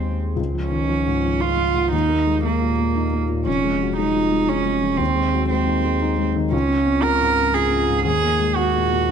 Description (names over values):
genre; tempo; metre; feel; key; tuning
neoclassical piano and strings; 117 BPM; 3/4; rubato; Db major; A4 = 440 Hz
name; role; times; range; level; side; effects
clear cello; second line; 0.0-9.1 s; Bb3 to Bb4; -20 LUFS; right 6 dB; none
felt-muted upright piano; accompaniment; 0.0-9.1 s; Db2 to Ab4; -23 LUFS; left 6 dB; none
saturated sub bass; bass; 0.0-9.1 s; F1 to Eb2; -25 LUFS; equal; none
room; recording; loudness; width
light reverb; nothing above 10.6 kHz; -18 LUFS; side -7 dB against mid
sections
0.4-9.1 A section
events
none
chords
0.4 Db; 1.9 Eb5; 3.5 Db/F; 5.0 Ab/Eb; 6.5 Db; 8.1 Ebm